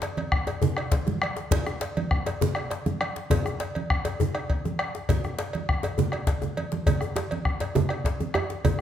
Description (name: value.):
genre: west african traditional, West African drum ensemble.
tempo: 134 BPM (dotted quarters).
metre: 12/8.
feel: straight.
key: none.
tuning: none.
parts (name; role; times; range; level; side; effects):
cowbell; percussion; 0.0-8.8 s; none; -34 LUFS; right 2 dB; none.
djembe; percussion; 0.0-8.8 s; none; -30 LUFS; left 6 dB; none.
congas; percussion; 0.2-8.8 s; none; -30 LUFS; right 6 dB; none.
bombo; percussion; 0.3-8.8 s; none; -28 LUFS; left 2 dB; none.
djembe; percussion; 7.2-8.5 s; none; -30 LUFS; right 4 dB; none.
room: moderate recital hall reverb, RT60 1.4 s.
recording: close, detailed microphones.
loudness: -24 LUFS.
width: side -10 dB against mid.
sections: 0.0-8.8 A section.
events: drum fill 6.4-6.9.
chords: none.